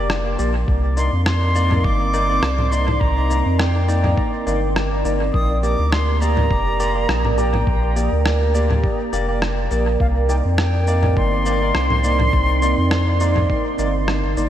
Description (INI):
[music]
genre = ambient dub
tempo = 103 BPM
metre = 4/4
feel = swing 54% on 16ths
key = C minor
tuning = A4 = 442 Hz
[part]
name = deep dark ambient pad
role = sustained chords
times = 0.0-14.5 s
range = Bb3 to G5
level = -24 LUFS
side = right 3 dB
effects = chorus, built-in reverb, vintage 12-bit sampler grit
[part]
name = barky tine electric piano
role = stabs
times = 0.0-14.5 s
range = Bb3 to D5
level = -26 LUFS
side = left 2 dB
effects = lush chorus, dub echo
[part]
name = warm sub bass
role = bass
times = 0.0-14.5 s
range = F1 to F2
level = -19 LUFS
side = equal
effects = none
[part]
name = electronic rim click, shaker and congas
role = drums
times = 0.1-14.5 s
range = none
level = -26 LUFS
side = left 1 dB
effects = overdrive, dub echo
[part]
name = electronic kick drum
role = drums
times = 0.7-13.6 s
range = none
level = -22 LUFS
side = equal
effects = overdrive
[part]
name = concert flute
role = melody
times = 1.0-14.1 s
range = F5 to Eb6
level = -25 LUFS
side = equal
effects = dub echo
[sound]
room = moderate lush hall reverb, RT60 2.6 s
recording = dreamy mix soaked in reverb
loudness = -16 LUFS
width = side -11 dB against mid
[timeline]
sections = 0.0-14.5 A section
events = none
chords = 0.0 Bb6; 0.7 Cm9; 5.3 Bb6; 10.0 Cm9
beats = 0.10 | 0.68 1.26 1.85 2.43 | 3.01 3.60 4.18 4.76 | 5.34 5.92 6.51 7.09 | 7.67 8.26 8.84 9.42 | 10.00 10.59 11.17 11.75 | 12.33 12.92 13.50 14.08